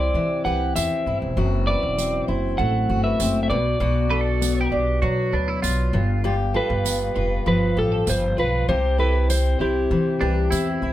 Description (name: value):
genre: acoustic pop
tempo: 98 BPM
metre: 4/4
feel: straight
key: unclear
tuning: A4 = 440 Hz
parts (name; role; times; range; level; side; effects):
- electric slide guitar; melody; 0.0-10.8 s; G4 to F#5; -24 LUFS; equal; none
- fingerpicked steel-string acoustic guitar; accompaniment; 0.0-10.9 s; F#2 to G4; -24 LUFS; left 3 dB; none
- twelve-string electric guitar; arpeggios; 0.0-10.4 s; G4 to D5; -31 LUFS; right 4 dB; none
- upright bass; bass; 0.0-10.9 s; E1 to C3; -23 LUFS; equal; none
- tambourine; percussion; 0.8-10.7 s; none; -29 LUFS; right 8 dB; none
- twelve-string electric guitar; second line; 4.1-6.4, 10.2-10.9 s; D4 to B4; -28 LUFS; right 3 dB; none
room: moderate small room reverb, RT60 0.5 s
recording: band playing live in one room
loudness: -19 LUFS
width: side -13 dB against mid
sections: 0.0-10.9 A section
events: none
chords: 0.0 C; 1.4 F#m7b5; 3.5 Bm; 5.9 G7; 8.7 C